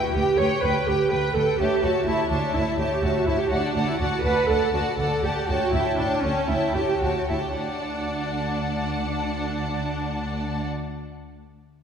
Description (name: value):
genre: quick classical-period movement for string orchestra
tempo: 107-127 BPM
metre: 4/4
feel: rubato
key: D major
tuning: A4 = 440 Hz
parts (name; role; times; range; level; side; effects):
- clear studio violin section; melody; 0.0-10.7 s; G5 to A5; -33 LUFS; left 5 dB; none
- rich studio violin section; second line; 0.0-10.7 s; B4 to G5; -29 LUFS; left 1 dB; none
- rich studio viola section; accompaniment; 0.0-10.6 s; C#4 to C#5; -25 LUFS; right 2 dB; none
- clear studio double bass section; bass; 0.1-10.6 s; D2; -30 LUFS; right 1 dB; none
- rich studio cello section; bass; 0.1-10.6 s; D2; -32 LUFS; right 1 dB; none
room: wet concert hall reverb, RT60 1.9 s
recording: heard from further back in the room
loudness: -22 LUFS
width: side -7 dB against mid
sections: 0.0-7.6 A section; 7.6-11.8 B section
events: slowing down 2.6-7.6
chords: 0.0 G/D; 1.6 A/D; 3.5 D; 5.5 A7/D; 7.6 D